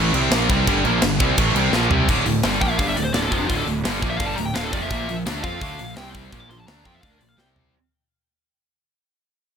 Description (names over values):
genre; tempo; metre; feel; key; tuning
heavy metal; 170 BPM; 4/4; straight; D minor; A4 = 440 Hz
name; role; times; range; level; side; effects
heavy high-gain guitar; riff; 0.0-7.7 s; D2 to F4; -25 LUFS; right 16 dB; distortion
scooped high-gain guitar; riff; 0.0-7.7 s; D2 to F4; -24 LUFS; left 13 dB; distortion
fuzz picked electric bass; bass; 0.0-7.7 s; D1 to F2; -26 LUFS; equal; overdrive
tight metal drum kit; drums; 0.1-7.6 s; crash cymbal, hi-hat, kick drum, snare drum, toms; -24 LUFS; equal; none
high-gain lead guitar; melody; 2.6-7.5 s; D4 to D6; -28 LUFS; left 2 dB; distortion
room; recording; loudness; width
little or no reverb; none; -18 LUFS; side -7 dB against mid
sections
0.0-2.1 A section; 2.1-7.7 B section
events
drum fill 1.7-2.1, 7.4-7.7; fade-out 2.1-7.7; lead electric guitar solo 2.1-7.7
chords
0.0 G5; 2.1 Dm; 4.9 Bb5; 6.0 C5; 6.3 Bb5; 7.4 C5